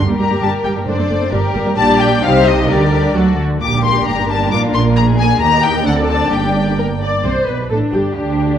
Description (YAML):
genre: quick classical-period movement for string orchestra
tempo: 132 BPM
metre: 2/4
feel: straight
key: G minor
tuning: A4 = 442 Hz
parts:
  - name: warm symphonic violin section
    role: melody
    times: 0.0-8.6 s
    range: D4 to D6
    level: -19 LUFS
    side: left 6 dB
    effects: none
  - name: rich symphonic violin section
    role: second line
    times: 0.0-8.6 s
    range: D4 to D5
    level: -20 LUFS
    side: left 3 dB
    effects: none
  - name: warm studio viola section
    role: accompaniment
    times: 0.1-8.6 s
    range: G3 to C5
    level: -19 LUFS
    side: equal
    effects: none
  - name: warm symphonic cello section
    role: bass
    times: 0.1-8.6 s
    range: D2 to F#3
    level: -19 LUFS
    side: right 3 dB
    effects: none
  - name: warm symphonic double bass section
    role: bass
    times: 0.2-8.6 s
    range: F#1 to Eb2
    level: -20 LUFS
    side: right 3 dB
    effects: none
room: moderate concert hall reverb, RT60 1.7 s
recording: dark, warm production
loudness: -12 LUFS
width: side -9 dB against mid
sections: 0.0-7.2 A section; 7.2-8.6 B section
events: none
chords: 0.0 Gm; 0.9 D7/F#; 1.3 Gm; 1.8 Gm/Bb; 2.2 Cm; 2.7 Gm/D; 3.1 D; 3.6 Gm/Bb; 4.1 Gm; 4.5 Bb; 5.4 Eb; 5.9 D7(no3); 6.3 Gm; 7.2 G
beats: 0.42 | 0.88 1.32 | 1.77 2.23 | 2.69 3.15 | 3.61 4.06 | 4.51 4.97 | 5.41 5.86 | 6.32 6.79 | 7.25 7.70 | 8.16